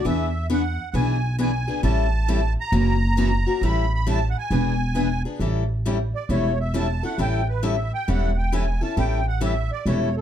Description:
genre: acoustic string swing (jazz manouche)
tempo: 134 BPM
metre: 4/4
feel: swing 65% on 8ths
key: A mixolydian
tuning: A4 = 440 Hz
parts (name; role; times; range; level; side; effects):
- musette accordion; melody; 0.0-10.2 s; A4 to B5; -29 LUFS; right 3 dB; plate reverb
- picked steel-string acoustic guitar; accompaniment; 0.0-10.1 s; C#3 to A4; -25 LUFS; left 3 dB; none
- upright bass; bass; 0.1-10.2 s; E1 to E2; -22 LUFS; right 1 dB; none
room: light reverb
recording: dark, warm production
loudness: -20 LUFS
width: side -10 dB against mid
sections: 0.0-5.4 A section; 5.4-10.2 B section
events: accordion solo 5.4-10.2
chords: 0.0 E7; 1.8 A7; 2.7 F#7; 3.6 A7; 4.5 E7; 5.4 A7

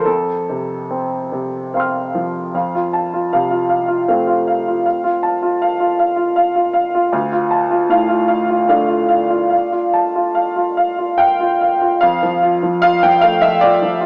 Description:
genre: neoclassical minimalist piano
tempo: 70-80 BPM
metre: 3/4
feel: rubato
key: F major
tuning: A4 = 439 Hz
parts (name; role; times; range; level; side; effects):
- warm upright piano; solo; 0.0-14.1 s; D2 to F6; -16 LUFS; equal; cassette tape
room: light reverb, small room reverb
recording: home recording on cassette, small speaker sound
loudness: -16 LUFS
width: mono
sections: 0.0-2.5 A section; 2.5-12.0 B section; 12.0-14.1 C section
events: none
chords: 0.1 F; 7.1 Dm; 12.0 F

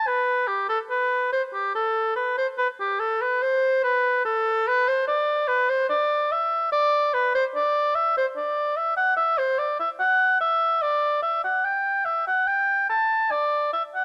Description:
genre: classical, baroque-style fantasia for unaccompanied oboe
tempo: 72 BPM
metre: 4/4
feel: rubato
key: unclear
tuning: A4 = 443 Hz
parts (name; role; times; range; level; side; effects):
- warm oboe; solo; 0.0-14.0 s; G4 to A5; -23 LUFS; equal; none
room: light reverb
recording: close, detailed microphones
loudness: -23 LUFS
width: mono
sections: 0.0-14.0 A section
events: none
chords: none

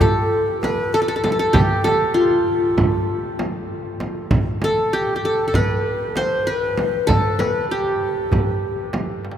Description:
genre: Turkish makam ensemble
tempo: 195 BPM (eighths)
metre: 9/8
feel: straight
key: A makam ussak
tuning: A4 = 441 Hz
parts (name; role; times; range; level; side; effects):
- qanun; melody; 0.0-9.0 s; F4 to C5; -21 LUFS; equal; none
- breathy mellow low ney; second line; 0.0-8.9 s; F4 to C5; -24 LUFS; left 2 dB; none
- darbuka; percussion; 0.0-9.4 s; none; -25 LUFS; right 1 dB; none
- frame drum; percussion; 0.0-9.1 s; none; -24 LUFS; right 1 dB; none
room: wet cathedral reverb, RT60 7.3 s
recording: in a vast, echoing space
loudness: -17 LUFS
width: side -9 dB against mid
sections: 0.0-9.4 A section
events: none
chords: none

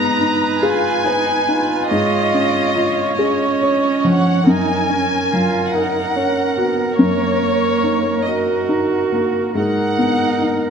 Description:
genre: neoclassical piano and strings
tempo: 47 BPM (dotted quarters)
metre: 6/8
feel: rubato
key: unclear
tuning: A4 = 441 Hz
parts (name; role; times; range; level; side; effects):
- muted chamber violin section; melody; 0.0-10.7 s; Db5 to Bb5; -20 LUFS; left 1 dB; none
- muted cello; second line; 0.0-10.7 s; Bb3 to Gb4; -22 LUFS; right 7 dB; none
- felt-muted upright piano; accompaniment; 0.0-10.7 s; Gb2 to Db5; -19 LUFS; left 2 dB; none
- muted viola; accompaniment; 0.0-10.7 s; Bb4 to Db5; -23 LUFS; right 2 dB; none
room: moderate scoring stage reverb, RT60 1.9 s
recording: dark, warm production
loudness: -15 LUFS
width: side -6 dB against mid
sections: 0.0-10.7 A section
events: none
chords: 0.0 Abmadd9; 1.9 Db/Ab; 4.5 Gbadd9; 7.0 Ebm/Gb; 9.6 Abmadd9

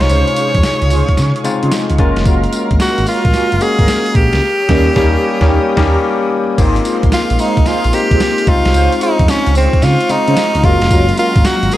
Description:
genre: R&B, new jack swing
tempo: 111 BPM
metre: 4/4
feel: swing 67% on 16ths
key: Ab major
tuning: A4 = 445 Hz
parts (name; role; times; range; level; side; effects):
- edgy tenor saxophone; melody; 0.0-11.8 s; C4 to Db5; -16 LUFS; equal; none
- bell-like tine electric piano; accompaniment; 0.0-11.8 s; C3 to G4; -18 LUFS; left 4 dB; none
- lush unison pad; sustained chords; 0.0-11.8 s; Gb3 to F6; -25 LUFS; right 2 dB; chorus
- smooth gliding synth bass; bass; 0.0-11.7 s; F1 to Db3; -16 LUFS; equal; none
- boom bap sampler-style drum kit; drums; 0.0-11.8 s; crash cymbal, hi-hat, kick drum, snare drum, tambourine; -16 LUFS; equal; none
- mellow synth brass; stabs; 0.1-11.8 s; Db4 to C5; -22 LUFS; right 1 dB; chorus, phaser
room: moderate echo chamber reverb, RT60 1.8 s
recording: dark, warm production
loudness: -10 LUFS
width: side -14 dB against mid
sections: 0.0-6.6 A section; 6.6-11.8 A section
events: band accent 4.4-6.6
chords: 0.0 Dbmaj7; 2.0 Gbmaj7; 4.4 Eb7; 6.6 Ab6; 8.5 Dbmaj7; 10.6 Gbmaj7

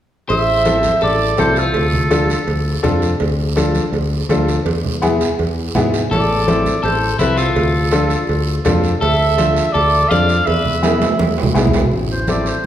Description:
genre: latin, cumbia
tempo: 165 BPM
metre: 4/4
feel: straight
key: A harmonic minor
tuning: A4 = 441 Hz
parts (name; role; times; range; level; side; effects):
- warm clarinet; melody; 0.3-3.0, 6.1-12.7 s; A4 to F5; -19 LUFS; right 2 dB; none
- electric guitar at the edge of break-up; second line; 0.3-3.0, 6.1-11.6 s; E4 to D5; -22 LUFS; left 3 dB; none
- fingered electric bass; bass; 0.3-12.5 s; A1 to G#2; -19 LUFS; equal; none
- cowbell and timbales; percussion; 0.3-11.8 s; none; -25 LUFS; right 4 dB; none
- guiro; percussion; 0.3-12.7 s; none; -30 LUFS; right 6 dB; none
- clear upright piano; accompaniment; 0.7-12.5 s; B3 to A4; -20 LUFS; left 2 dB; none
- congas; percussion; 0.7-12.5 s; none; -23 LUFS; right 2 dB; none
room: wet recital hall reverb, RT60 1.8 s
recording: recorded in a church or concert hall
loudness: -14 LUFS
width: side -11 dB against mid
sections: 0.3-11.9 A section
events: drum fill 10.8-11.9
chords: 0.3 Am; 1.8 Dm; 4.7 E; 6.1 Am; 7.6 Dm; 10.5 E; 11.9 Am

